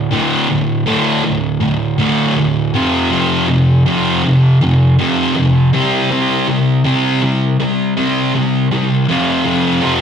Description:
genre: rock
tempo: 80 BPM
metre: 4/4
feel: straight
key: unclear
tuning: A4 = 440 Hz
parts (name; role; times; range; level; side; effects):
- thick fuzz guitar; solo; 0.0-10.0 s; D2 to C4; -12 LUFS; equal; distortion, slapback echo
room: moderate booth ambience, RT60 0.2 s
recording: rough rehearsal-room recording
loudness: -12 LUFS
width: side -7 dB against mid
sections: 0.0-9.1 A section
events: none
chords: 0.0 D5; 2.7 F5; 5.7 C5; 9.1 F5

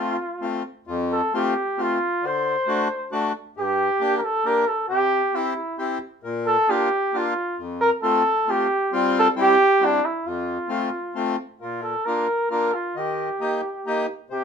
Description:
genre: alpine folk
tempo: 134 BPM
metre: 3/4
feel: rubato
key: F major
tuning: A4 = 440 Hz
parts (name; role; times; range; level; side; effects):
- warm flugelhorn; melody; 0.0-14.4 s; D4 to C5; -21 LUFS; right 1 dB; none
- accordion; accompaniment; 0.0-14.4 s; F2 to G4; -26 LUFS; left 3 dB; none
room: wet small room reverb, RT60 0.6 s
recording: minimal, uncompressed stereo recording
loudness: -20 LUFS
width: side -6 dB against mid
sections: 0.9-11.6 A section; 11.6-14.4 B section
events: none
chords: 0.0 F; 2.2 D7; 3.6 Gm; 4.9 C; 6.2 Bb; 7.6 Fadd9; 8.9 Csus4; 9.4 C; 10.2 F; 11.6 Bb; 13.0 Eb

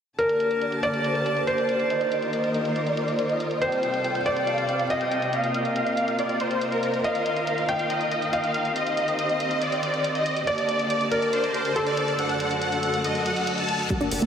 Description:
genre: uplifting trance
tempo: 140 BPM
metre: 4/4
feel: straight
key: G minor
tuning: A4 = 435 Hz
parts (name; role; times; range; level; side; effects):
- supersaw chords; melody; 0.2-14.3 s; Bb4 to A5; -27 LUFS; equal; ensemble chorus, sidechain pumping, low-pass filter, tape echo
- felt-muted upright piano; second line; 0.2-13.8 s; A4 to G5; -26 LUFS; equal; tape echo
- rich symphonic string section; sustained chords; 0.2-14.3 s; F#2 to A5; -29 LUFS; left 1 dB; sidechain pumping
- electronic hi-hat; drums; 0.2-14.3 s; none; -37 LUFS; equal; low-pass filter on hats, small room ambience
- reverse cymbal and riser; sound effects; 13.2-14.3 s; none; -34 LUFS; left 4 dB; none
- wide unison pluck; arpeggios; 13.9-14.3 s; G3 to D4; -25 LUFS; equal; cassette tape, sidechain pumping
- electronic kick drum; drums; 13.9-14.0 s; none; -28 LUFS; equal; small room ambience
- tight sequencer bass; bass; 14.0-14.3 s; G1; -34 LUFS; equal; sidechain pumping
room: wet huge ambient reverb, RT60 7.0 s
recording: dreamy mix soaked in reverb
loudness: -22 LUFS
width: side -8 dB against mid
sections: 0.2-13.9 A section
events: filter sweep on supersaw synth 0.2-13.9; reverse cymbal 13.2-13.9; riser 13.9-14.3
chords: 0.2 Gmadd9; 1.9 Ebsus2; 3.6 Fadd9; 5.3 Bbsus2; 7.0 Ebsus2; 8.8 Cm; 10.5 Gmadd9; 12.2 D/F#

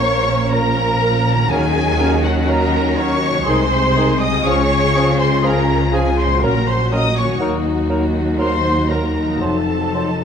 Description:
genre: classical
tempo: 61 BPM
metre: 3/4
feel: rubato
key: unclear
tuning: A4 = 440 Hz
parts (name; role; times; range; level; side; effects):
- warm symphonic violin section; melody; 0.0-10.2 s; Gb5 to Eb6; -22 LUFS; left 6 dB; none
- bright small flute group; second line; 0.0-10.2 s; Gb5 to Eb6; -26 LUFS; right 3 dB; none
- dark clarinet; second line; 0.0-10.1 s; Db4 to Eb4; -29 LUFS; left 2 dB; none
- dark symphonic violin section; second line; 0.0-10.2 s; Ab3 to Ab4; -27 LUFS; left 2 dB; none
- mellow cor anglais; second line; 0.0-10.1 s; Ab4 to C5; -29 LUFS; right 2 dB; none
- mellow bassoon; accompaniment; 0.0-10.1 s; Eb3 to Gb3; -27 LUFS; right 2 dB; none
- warm symphonic viola section; accompaniment; 0.0-10.2 s; Gb4 to Eb5; -23 LUFS; right 1 dB; none
- dark French horn section; sustained chords; 0.0-10.2 s; F3 to Gb4; -23 LUFS; left 4 dB; none
- concert harp; arpeggios; 0.0-10.2 s; Bb2 to Eb5; -26 LUFS; left 9 dB; none
- rich symphonic cello section; bass; 0.0-10.2 s; Eb2 to Eb3; -23 LUFS; right 2 dB; none
- warm studio double bass section; bass; 0.0-10.2 s; F1 to Eb2; -22 LUFS; right 3 dB; none
room: light reverb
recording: close, detailed microphones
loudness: -14 LUFS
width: side -7 dB against mid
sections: 0.0-10.2 A section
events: none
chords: 0.0 Bbm; 1.5 Ebm7; 3.5 Ab/C; 4.5 Db; 6.4 Gb/Bb; 7.4 Ebm; 9.4 F7b9

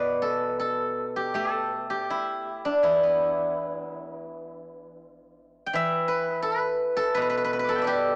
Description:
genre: chinese traditional, Chinese solo plucked strings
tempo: 78-86 BPM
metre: 4/4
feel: rubato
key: E yu mode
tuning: A4 = 440 Hz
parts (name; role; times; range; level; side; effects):
- steel-string zither; solo; 0.0-8.2 s; B2 to D6; -27 LUFS; equal; cassette tape, analog delay
room: moderate studio reverb, RT60 0.6 s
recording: home recording on cassette, small speaker sound, faint mains hum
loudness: -26 LUFS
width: mono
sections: 0.0-8.2 A section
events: none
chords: none

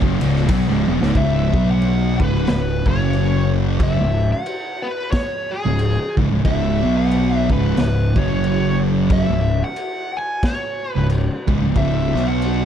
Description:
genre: stoner and doom metal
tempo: 91 BPM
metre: 4/4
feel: swing 58% on 8ths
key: C# minor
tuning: A4 = 441 Hz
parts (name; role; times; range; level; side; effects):
- biting overdriven guitar; riff; 0.0-1.2 s; C#2 to F#3; -27 LUFS; left 1 dB; none
- thick fuzz guitar; riff; 0.0-12.7 s; C#2 to B3; -22 LUFS; left 8 dB; distortion
- thick fuzz guitar; riff; 0.0-12.7 s; C#2 to B3; -21 LUFS; right 8 dB; distortion
- fuzz fingered electric bass; bass; 0.0-12.7 s; C#1 to B1; -22 LUFS; equal; overdrive
- raw garage drum kit; drums; 0.0-12.6 s; crash cymbal, kick drum, ride cymbal, snare drum, toms; -24 LUFS; equal; none
- fuzz lead guitar; melody; 1.2-12.7 s; G#4 to G#5; -25 LUFS; left 1 dB; wah, distortion, analog delay
room: studio ambience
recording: dark, warm production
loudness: -16 LUFS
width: side -9 dB against mid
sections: 0.0-1.2 A section; 1.2-12.7 B section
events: drum fill 0.8-1.2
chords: 0.0 C#m; 1.5 B5; 2.2 C#5; 2.8 F#5; 4.0 C#5; 6.8 B5; 7.5 C#5; 8.1 F#5; 9.3 C#5; 12.1 B5

